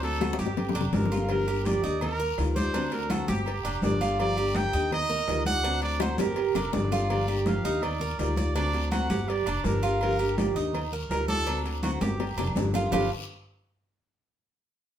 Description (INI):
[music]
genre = latin, Cuban son and guajira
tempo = 165 BPM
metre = 4/4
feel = straight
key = G minor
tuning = A4 = 439 Hz
[part]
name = warm trumpet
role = melody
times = 0.0-12.5 s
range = F#4 to G5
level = -32 LUFS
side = right 2 dB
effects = plate reverb
[part]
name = nylon-string guitar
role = accompaniment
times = 0.0-13.1 s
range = G2 to G4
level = -31 LUFS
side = left 3 dB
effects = none
[part]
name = Cuban tres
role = arpeggios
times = 0.0-13.1 s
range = G3 to D5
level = -32 LUFS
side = right 4 dB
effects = none
[part]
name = upright bass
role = bass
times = 0.0-13.1 s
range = F1 to Eb2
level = -31 LUFS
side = equal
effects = none
[part]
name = agogo bells and timbales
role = percussion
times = 0.0-13.0 s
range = none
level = -38 LUFS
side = right 3 dB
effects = none
[part]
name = congas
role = percussion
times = 0.0-13.0 s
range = none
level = -33 LUFS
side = equal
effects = none
[part]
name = cowbell and bongos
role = percussion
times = 0.0-13.0 s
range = none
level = -35 LUFS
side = left 4 dB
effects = none
[part]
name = guiro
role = percussion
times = 0.2-13.0 s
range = none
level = -44 LUFS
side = left 5 dB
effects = none
[sound]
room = wet studio reverb, RT60 0.6 s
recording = heard from further back in the room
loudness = -24 LUFS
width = side -10 dB against mid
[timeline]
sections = 0.0-1.3 A section; 1.3-12.9 A section; 12.9-14.4 B section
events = drum fill 0.2-1.3, 6.0-7.1, 12.0-12.9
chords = 0.0 D7; 0.6 Gm7; 2.0 Ebadd9; 2.7 D7; 3.5 Gm7; 4.9 Ebadd9; 5.6 D7; 6.4 Gm7; 7.8 Ebadd9; 8.6 D7; 9.3 Gm7; 10.7 Ebadd9; 11.5 D7; 12.2 Gm7; 12.9 G7(no3)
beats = 0.20 0.57 0.93 | 1.29 1.66 2.02 2.38 | 2.74 3.11 3.47 3.83 | 4.20 4.56 4.92 5.29 | 5.65 6.01 6.38 6.74 | 7.10 7.47 7.83 8.19 | 8.56 8.92 9.29 9.65 | 10.01 10.38 10.74 11.11 | 11.47 11.83 12.20 12.56 | 12.93